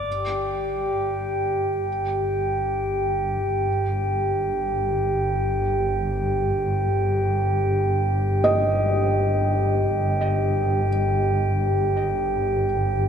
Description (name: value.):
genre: ambient.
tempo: free time.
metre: none.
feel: none.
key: unclear.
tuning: A4 = 440 Hz.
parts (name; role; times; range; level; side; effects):
glass harmonica; texture; 0.0-13.1 s; G4 to D6; -23 LUFS; right 1 dB; none.
warm studio double bass section; bass; 0.1-13.1 s; G1; -25 LUFS; equal; none.
felt-muted upright piano; arpeggios; 8.4-13.1 s; Eb5; -26 LUFS; right 1 dB; tape echo.
room: wet cathedral reverb, RT60 6.3 s.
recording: dark, warm production.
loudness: -20 LUFS.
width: side -7 dB against mid.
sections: 0.0-13.1 A section.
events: none.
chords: none.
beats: free time.